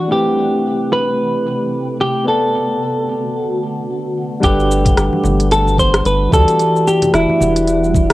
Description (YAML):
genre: sunset chillout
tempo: 111 BPM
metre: 4/4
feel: swing 57% on 16ths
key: unclear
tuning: A4 = 440 Hz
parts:
  - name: semi-hollow electric guitar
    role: melody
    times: 0.0-8.1 s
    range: E4 to C5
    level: -16 LUFS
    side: equal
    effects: tape echo, plate reverb
  - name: tine electric piano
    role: accompaniment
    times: 0.0-8.1 s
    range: E3 to A5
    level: -19 LUFS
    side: equal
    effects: auto-pan, plate reverb
  - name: shimmering ambient pad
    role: sustained chords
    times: 0.0-8.1 s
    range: C3 to F#5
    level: -25 LUFS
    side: right 1 dB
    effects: chorus, built-in reverb, phaser, plate reverb
  - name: round analog bass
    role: bass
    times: 4.4-8.1 s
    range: E1 to D2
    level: -17 LUFS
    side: equal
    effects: none
  - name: electronic kick drum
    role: drums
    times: 4.4-8.1 s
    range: none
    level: -16 LUFS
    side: equal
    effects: cassette tape
  - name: smooth R&B drum kit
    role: drums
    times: 4.4-8.1 s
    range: hi-hat, rim click, shaker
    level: -20 LUFS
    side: equal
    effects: cassette tape
  - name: congas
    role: percussion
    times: 4.8-8.1 s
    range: none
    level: -23 LUFS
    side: left 1 dB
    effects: none
room: moderate studio reverb, RT60 0.5 s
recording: home recording on cassette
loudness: -13 LUFS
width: side -17 dB against mid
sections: 0.0-4.4 A section; 4.4-8.1 B section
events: none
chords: 0.1 Am9; 2.3 Bm7; 4.4 Gmaj9; 6.6 Em9